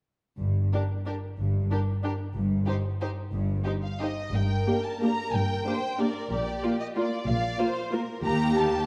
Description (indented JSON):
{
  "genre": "classical, orchestral ballroom waltz",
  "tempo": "184 BPM",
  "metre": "3/4",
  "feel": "uneven beats, rubato",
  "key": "G minor",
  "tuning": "A4 = 439 Hz",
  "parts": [
    { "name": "rich symphonic cello section", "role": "bass", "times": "0.4-8.9 s", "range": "Eb2 to Bb2", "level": "-33 LUFS", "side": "equal", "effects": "none" },
    { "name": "warm symphonic double bass section", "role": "bass", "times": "0.4-8.5 s", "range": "G1 to Eb2", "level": "-33 LUFS", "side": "equal", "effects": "none" },
    { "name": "warm symphonic violin section", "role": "melody", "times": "0.7-8.9 s", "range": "Bb4 to Bb5", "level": "-36 LUFS", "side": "equal", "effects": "none" },
    { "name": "rich symphonic violin section", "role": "second line", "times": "0.7-8.9 s", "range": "F4 to D5", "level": "-38 LUFS", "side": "equal", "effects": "none" },
    { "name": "rich symphonic viola section", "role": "accompaniment", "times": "0.7-8.8 s", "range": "Bb3 to G4", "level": "-33 LUFS", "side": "equal", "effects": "none" },
    { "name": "warm French horn section", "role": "sustained chords", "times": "4.7-8.7 s", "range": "Bb3 to G4", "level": "-36 LUFS", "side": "equal", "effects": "none" }
  ],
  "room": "wet recital hall reverb, RT60 1.8 s",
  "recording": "dark, warm production",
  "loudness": "-28 LUFS",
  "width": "mono",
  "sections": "0.4-4.3 A section; 4.3-8.9 B section",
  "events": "none",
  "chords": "0.4 G5; 2.4 Cm/G (rootless); 4.3 Gm; 6.3 Bb; 8.2 Eb"
}